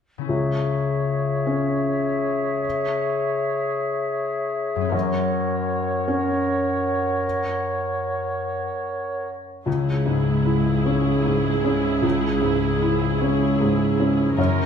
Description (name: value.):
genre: cinematic, emotional film score for orchestra.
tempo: 51 BPM (dotted quarters).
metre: 6/8.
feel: rubato.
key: C# dorian.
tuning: A4 = 440 Hz.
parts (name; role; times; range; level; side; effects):
concert harp; arpeggios; 0.2-14.7 s; F#2 to C#5; -27 LUFS; left 8 dB; none.
bright clarinet; second line; 0.3-9.3 s; G#4 to A#4; -29 LUFS; left 3 dB; none.
mellow hollow silver concert flute; second line; 0.3-9.3 s; E5 to F#5; -29 LUFS; left 1 dB; none.
mellow oboe; second line; 0.3-9.3 s; C#5; -27 LUFS; right 1 dB; none.
felt-muted upright piano; accompaniment; 0.3-14.7 s; C#2 to E4; -24 LUFS; equal; none.
rich symphonic viola section; accompaniment; 9.7-14.7 s; C#4 to A#4; -26 LUFS; right 4 dB; none.
rich symphonic cello section; bass; 9.7-14.7 s; C#2 to F#2; -26 LUFS; right 5 dB; none.
room: wet recital hall reverb, RT60 1.5 s.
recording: minimal, uncompressed stereo recording.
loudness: -20 LUFS.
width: side -7 dB against mid.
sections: 0.3-9.7 A section; 9.7-14.7 B section.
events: none.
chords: 0.3 C#m; 4.9 F#; 9.7 C#m.